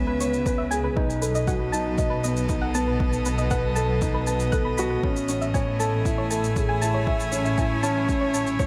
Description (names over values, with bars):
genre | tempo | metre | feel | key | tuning
piano and strings electronica | 118 BPM | 4/4 | straight | unclear | A4 = 440 Hz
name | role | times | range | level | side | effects
rich string quartet | sustained chords | 0.0-8.7 s | B2 to G#5 | -34 LUFS | equal | none
dark concert grand piano | riff | 0.0-8.7 s | B3 to E5 | -29 LUFS | equal | tape echo
dark studio double bass section | bass | 0.0-8.7 s | A1 to C#2 | -30 LUFS | equal | sidechain pumping
soft round pluck | arpeggios | 0.1-8.4 s | B4 to F#6 | -34 LUFS | equal | chorus, cassette tape, sidechain pumping, tape echo
shaker | drums | 0.2-8.7 s | none | -38 LUFS | equal | overdrive
electronic kick drum | drums | 0.5-8.7 s | none | -29 LUFS | equal | none
room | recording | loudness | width
light reverb, small room ambience | none | -24 LUFS | mono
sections
0.0-8.7 A section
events
filter sweep on grand piano 0.0-8.7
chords
0.0 C#m7; 1.0 B7; 5.0 Amaj7